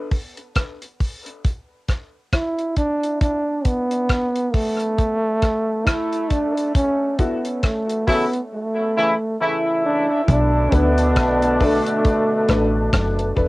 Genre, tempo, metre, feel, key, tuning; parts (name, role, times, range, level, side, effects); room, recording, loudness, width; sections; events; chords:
dub reggae; 68 BPM; 4/4; swing 59% on 16ths; B minor; A4 = 441 Hz
damped 70s drum kit; drums; 0.1-13.5 s; hi-hat, kick drum, rim click; -21 LUFS; equal; cassette tape
dark trombone; melody; 2.3-13.4 s; A3 to E4; -20 LUFS; right 1 dB; cassette tape, dub echo
warm upright piano; stabs; 7.2-13.5 s; D4 to B4; -26 LUFS; left 2 dB; cassette tape, dub echo
mellow horn section; second line; 8.1-13.3 s; B2 to E4; -21 LUFS; left 1 dB; cassette tape, dub echo
deep dub fingered electric bass; bass; 10.3-13.5 s; E1 to D2; -20 LUFS; equal
moderate booth ambience, RT60 0.2 s; home recording on cassette; -18 LUFS; side -20 dB against mid
0.0-10.3 A section; 10.3-13.5 B section
break 0.0-6.7; band accent 6.7-10.3; drums muted 8.5-10.3
0.0 N.C.; 6.7 F#m7; 10.3 Bm7